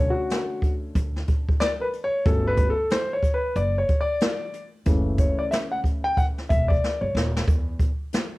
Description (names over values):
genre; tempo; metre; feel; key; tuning
hip hop, jazz-hop; 92 BPM; 4/4; swing 61% on 16ths; unclear; A4 = 440 Hz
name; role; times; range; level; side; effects
warm concert grand piano; accompaniment; 0.0-7.4 s; C#3 to G5; -25 LUFS; left 1 dB; cassette tape
upright bass; bass; 0.0-7.9 s; D#1 to E2; -26 LUFS; equal; tube saturation
jazz brush drum kit; drums; 0.3-8.3 s; hi-hat, kick drum, snare drum; -23 LUFS; equal; cassette tape
room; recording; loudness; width
little or no reverb; home recording on cassette; -21 LUFS; side -20 dB against mid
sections
0.0-7.5 A section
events
grand piano solo 0.0-7.5; drum fill 6.8-7.5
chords
0.0 Bm7 (rootless); 2.3 Gmaj9#11; 4.9 F#m7; 7.5 N.C.